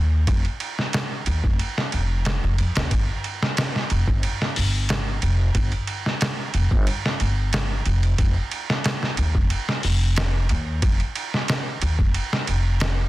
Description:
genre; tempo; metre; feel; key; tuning
trip hop; 91 BPM; 4/4; straight; unclear; A4 = 439 Hz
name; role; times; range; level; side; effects
upright bass; bass; 0.0-13.1 s; F1 to F2; -22 LUFS; equal; tube saturation
trip hop sampler-style drum kit; drums; 0.3-13.0 s; hi-hat, kick drum, ride cymbal, snare drum; -23 LUFS; equal; none
room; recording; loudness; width
little or no reverb; dense, heavily limited modern master; -20 LUFS; side -17 dB against mid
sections
0.0-2.9 A section; 2.9-13.1 B section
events
none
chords
none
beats
| 0.28 0.93 1.59 2.25 | 2.91 3.57 4.23 4.89 | 5.55 6.21 6.87 7.53 | 8.19 8.85 9.51 10.16 | 10.82 11.48 12.14 12.80

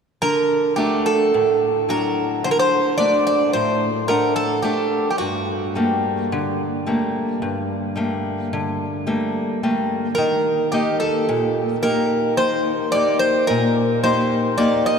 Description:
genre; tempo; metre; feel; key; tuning
greek folk; 109 BPM (eighths); 9/8; straight; D phrygian dominant; A4 = 439 Hz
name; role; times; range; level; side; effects
Greek bouzouki; melody; 0.2-15.0 s; F#4 to Eb5; -19 LUFS; right 2 dB; none
fingerpicked old ladder-braced acoustic guitar; accompaniment; 0.2-15.0 s; G2 to F#5; -21 LUFS; left 1 dB; none
room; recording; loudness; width
wet cathedral reverb, RT60 6.0 s; recorded in a church or concert hall; -17 LUFS; side -6 dB against mid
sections
0.2-15.0 A section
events
none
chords
0.2 D; 5.2 Gmadd9; 10.2 Eb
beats
| 0.22 0.77 1.32 1.88 2.43 2.98 3.54 4.09 4.64 | 5.20 5.75 6.30 6.86 7.41 7.96 8.51 9.06 9.62 | 10.17 10.72 11.27 11.82 12.37 12.92 13.47 14.02 14.57

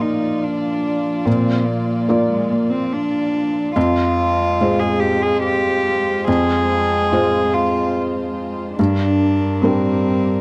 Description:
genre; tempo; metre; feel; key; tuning
neoclassical piano and strings; 72 BPM; 3/4; rubato; F dorian; A4 = 438 Hz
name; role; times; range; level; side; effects
dark cello; second line; 0.0-10.4 s; Ab3 to Ab4; -22 LUFS; equal; none
felt-muted upright piano; accompaniment; 0.0-10.4 s; F2 to D5; -22 LUFS; equal; none
dark chamber string section; sustained chords; 0.0-10.4 s; F3 to D5; -29 LUFS; equal; none
room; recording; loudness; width
small room ambience; dry, close 1970s-style studio recording; -18 LUFS; mono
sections
0.0-10.4 A section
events
none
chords
0.0 Bb; 3.8 Fm; 8.8 Gm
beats
0.43 | 1.26 2.09 2.92 | 3.76 4.59 5.43 | 6.27 7.11 7.94 | 8.78 9.62

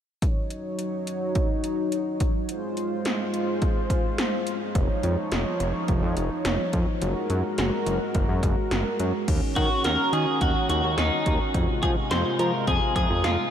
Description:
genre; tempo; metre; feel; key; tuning
synth-pop; 106 BPM; 4/4; straight; Eb dorian; A4 = 439 Hz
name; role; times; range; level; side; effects
chorused pulse-width pad; sustained chords; 0.2-13.5 s; C3 to Db5; -28 LUFS; equal; none
80s electronic pad drums; drums; 0.2-13.4 s; crash cymbal, hi-hat, kick drum, snare drum; -26 LUFS; equal; none
fat analog bass; bass; 4.8-13.4 s; F1 to F3; -26 LUFS; equal; none
twelve-string electric guitar; melody; 9.6-13.5 s; Eb4 to C5; -25 LUFS; equal; lush chorus, ping-pong delay
room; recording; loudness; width
moderate huge ambient reverb, RT60 8.0 s; dreamy mix soaked in reverb; -22 LUFS; side -9 dB against mid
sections
0.2-9.3 A section; 9.3-13.5 B section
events
none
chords
0.2 Ebm7; 2.5 Fm; 4.8 Dbadd9/F; 7.0 Gbadd9; 9.3 Ebm7; 11.5 Fm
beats
| 0.22 0.79 1.36 1.92 | 2.49 3.05 3.62 4.19 | 4.75 5.32 5.88 6.45 | 7.02 7.58 8.15 8.71 | 9.28 9.85 10.41 10.98 | 11.54 12.11 12.68 13.24

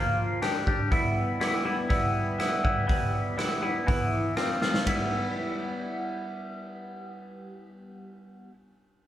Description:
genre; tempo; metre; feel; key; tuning
indie rock; 122 BPM; 4/4; straight; unclear; A4 = 438 Hz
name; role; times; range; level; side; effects
twangy electric guitar; riff; 0.0-8.5 s; E3 to G4; -28 LUFS; left 1 dB; phaser
raw garage drum kit; drums; 0.4-5.0 s; hi-hat, kick drum, ride cymbal, rim click, snare drum; -28 LUFS; equal; none
room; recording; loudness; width
moderate large studio reverb, RT60 1.4 s; band playing live in one room; -25 LUFS; side -12 dB against mid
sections
0.0-4.9 A section; 4.9-8.8 B section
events
drum fill 4.6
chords
0.4 G5; 0.9 G6; 3.9 E5; 4.4 F5; 4.9 G6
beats
0.43 | 0.93 1.42 1.91 2.40 | 2.90 3.39 3.88 4.38 | 4.87 5.36 5.85 6.34 | 6.83 7.33 7.82 8.31

